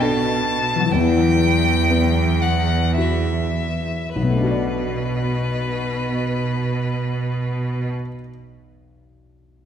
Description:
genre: cinematic, emotional film score for orchestra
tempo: 50-66 BPM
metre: 3/4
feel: rubato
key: B minor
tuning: A4 = 441 Hz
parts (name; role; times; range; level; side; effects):
- clear violin; melody; 0.0-7.9 s; B4 to A5; -25 LUFS; left 3 dB; none
- dark grand piano; accompaniment; 0.0-9.7 s; B1 to D5; -24 LUFS; left 2 dB; none
- concert harp; arpeggios; 0.0-8.3 s; B2 to D5; -26 LUFS; left 5 dB; none
- clear symphonic cello section; bass; 0.0-7.9 s; E2 to B2; -22 LUFS; right 3 dB; none
room: wet scoring stage reverb, RT60 1.7 s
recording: none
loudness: -18 LUFS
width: side -8 dB against mid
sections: 0.0-4.2 A section; 4.2-7.7 B section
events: slowing down 0.0-4.2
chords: 0.0 Bm7; 0.9 Emadd9; 4.2 Bm7

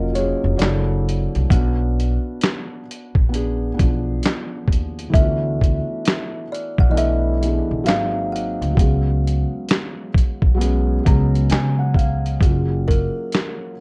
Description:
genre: lo-fi hip hop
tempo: 66 BPM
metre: 4/4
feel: swing 64% on 16ths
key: F# major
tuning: A4 = 435 Hz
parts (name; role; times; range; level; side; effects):
- kalimba; melody; 0.0-13.8 s; G#4 to F#5; -29 LUFS; equal; tape echo, plate reverb
- felt-muted upright piano; accompaniment; 0.0-13.8 s; E3 to A#5; -27 LUFS; equal; plate reverb
- upright bass; bass; 0.0-13.1 s; E#1 to C#3; -23 LUFS; equal; none
- dusty soul sampler-style drum kit; drums; 0.2-13.6 s; handclaps, hi-hat, kick drum, snare drum; -20 LUFS; equal; none
room: light reverb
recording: cassette tape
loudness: -19 LUFS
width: mono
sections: 0.0-12.4 A section; 12.4-13.8 B section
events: none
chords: 0.0 F#maj9; 0.6 F#7alt; 1.5 Bm; 5.1 D69; 7.9 G#9; 8.8 C#7sus4; 12.4 F#maj9

